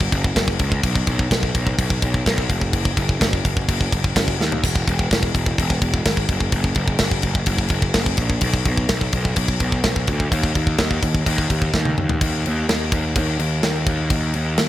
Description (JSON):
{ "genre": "heavy metal", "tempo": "127 BPM", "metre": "4/4", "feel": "straight", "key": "unclear", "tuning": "A4 = 440 Hz", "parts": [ { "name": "fuzz picked electric bass", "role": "bass", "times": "0.0-14.7 s", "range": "E1 to Eb2", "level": "-21 LUFS", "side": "equal", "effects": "overdrive" }, { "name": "tight metal drum kit", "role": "drums", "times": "0.0-14.7 s", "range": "crash cymbal, kick drum, snare drum, splash cymbal, toms", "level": "-20 LUFS", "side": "equal", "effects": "none" } ], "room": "little or no reverb", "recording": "none", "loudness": "-18 LUFS", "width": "side -14 dB against mid", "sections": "0.0-12.2 A section; 12.2-14.7 B section", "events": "drum fill 4.4, 11.7-12.2", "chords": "none" }